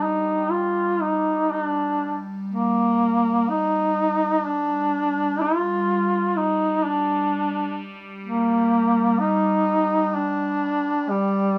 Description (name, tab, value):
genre	caucasian folk, Caucasian lament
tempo	62 BPM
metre	3/4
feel	rubato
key	G minor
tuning	A4 = 440 Hz
part	warm duduk	melody	0.0-11.6 s	G3 to F4	-23 LUFS	equal	none
part	evolving wavetable pad	drone	0.0-11.6 s	G3	-31 LUFS	equal	phaser, built-in reverb, cassette tape
room	little or no reverb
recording	home recording on cassette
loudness	-22 LUFS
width	mono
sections	0.0-11.6 A section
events	none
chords	none